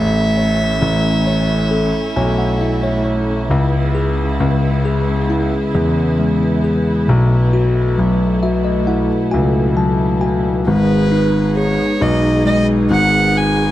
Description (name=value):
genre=pop ballad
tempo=67 BPM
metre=4/4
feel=straight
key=unclear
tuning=A4 = 436 Hz
part: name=warm violin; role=melody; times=0.0-3.0, 10.7-13.7 s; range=B4 to G#5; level=-20 LUFS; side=right 3 dB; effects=plate reverb
part: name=bell-like tine electric piano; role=accompaniment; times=0.0-13.7 s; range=B2 to A5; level=-17 LUFS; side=left 2 dB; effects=none
part: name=rich studio string section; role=sustained chords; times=0.0-13.7 s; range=C#3 to G#4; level=-22 LUFS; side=right 2 dB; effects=plate reverb
part: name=clear grand piano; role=bass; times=0.0-13.7 s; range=G#1 to E2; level=-18 LUFS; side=equal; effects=none
room=moderate studio reverb, RT60 0.6 s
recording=dark, warm production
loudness=-13 LUFS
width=side -14 dB against mid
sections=0.0-10.7 A section; 10.7-13.7 B section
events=tine electric piano fill 1.7-3.5, 8.0-10.7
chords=0.0 A; 3.5 C#m7; 7.1 B7sus4; 10.7 G#m